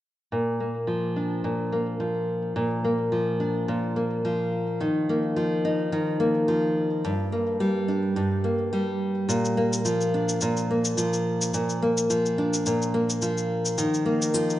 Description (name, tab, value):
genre	folktronica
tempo	107 BPM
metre	4/4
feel	swing 56% on 16ths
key	Bb major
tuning	A4 = 437 Hz
part	nylon-string guitar	arpeggios	0.3-14.6 s	G2 to Eb4	-23 LUFS	equal	low-pass filter, tape echo
part	cabasa	drums	9.3-14.6 s	none	-30 LUFS	left 2 dB	none
room	moderate plate reverb, RT60 2.2 s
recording	rough home demo mix, nothing above 10.3 kHz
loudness	-23 LUFS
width	side -14 dB against mid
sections	0.3-14.6 A section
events	none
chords	0.3 Bb; 4.8 Ebsus2; 7.1 Gm; 9.3 Bb; 13.8 Ebsus2